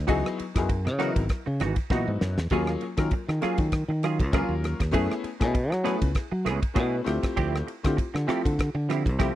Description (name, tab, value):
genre	electric jazz fusion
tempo	99 BPM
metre	4/4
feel	swing 55% on 16ths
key	unclear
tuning	A4 = 440 Hz
part	fingered electric bass	bass	0.0-9.3 s	Ab1 to Gb3	-27 LUFS	equal	none
part	bright grand piano	accompaniment	0.1-9.4 s	Gb3 to Cb5	-30 LUFS	left 4 dB	none
part	semi-hollow electric guitar	stabs	0.1-9.4 s	Fb3 to Ab4	-31 LUFS	right 8 dB	ensemble chorus
part	damped 70s drum kit	drums	0.1-9.4 s	kick drum, ride cymbal, rim click, snare drum	-28 LUFS	equal	none
room	little or no reverb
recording	dry, close 1970s-style studio recording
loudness	-24 LUFS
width	side -13 dB against mid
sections	0.0-9.4 A section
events	drum fill 1.9-2.5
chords	0.1 Dbm11; 2.5 Ebm11; 4.9 Gbm11; 7.1 Dm11